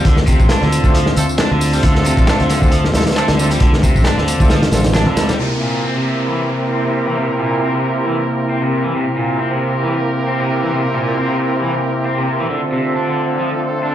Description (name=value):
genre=breakbeat, breaks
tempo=135 BPM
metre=4/4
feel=swing 55% on 16ths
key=unclear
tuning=A4 = 440 Hz
part: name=mellow tonewheel organ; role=sustained chords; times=0.0-13.9 s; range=C3 to F4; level=-21 LUFS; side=equal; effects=chorus vibrato, slow rotary speaker, sidechain pumping
part: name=overdriven electric guitar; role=riff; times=0.0-13.9 s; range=Bb2 to D4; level=-20 LUFS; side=equal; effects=low-pass filter, dub echo
part: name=fingered electric bass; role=bass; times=0.1-5.3 s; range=A1 to D2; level=-17 LUFS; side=equal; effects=none
part: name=crunchy breakbeat drum kit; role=drums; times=0.1-5.4 s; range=hi-hat, kick drum, snare drum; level=-15 LUFS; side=equal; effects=none
part: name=electronic tambourine and handclaps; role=drums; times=0.1-5.4 s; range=none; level=-26 LUFS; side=right 1 dB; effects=low-pass filter on perc, low-pass filter on snare
part: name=bright horn section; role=stabs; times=0.8-13.9 s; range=A3 to Bb4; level=-21 LUFS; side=right 2 dB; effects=low-pass filter, dub echo
part: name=downlifter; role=sound effects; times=5.4-8.9 s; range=none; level=-29 LUFS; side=equal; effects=none
room=moderate digital room reverb, RT60 0.9 s, studio reverb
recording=played on a big sound system in a bare room, large studio reverb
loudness=-13 LUFS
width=side -11 dB against mid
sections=0.0-5.4 A section; 5.4-13.9 B section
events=none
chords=0.0 Dm7; 5.4 C7; 12.5 Dm7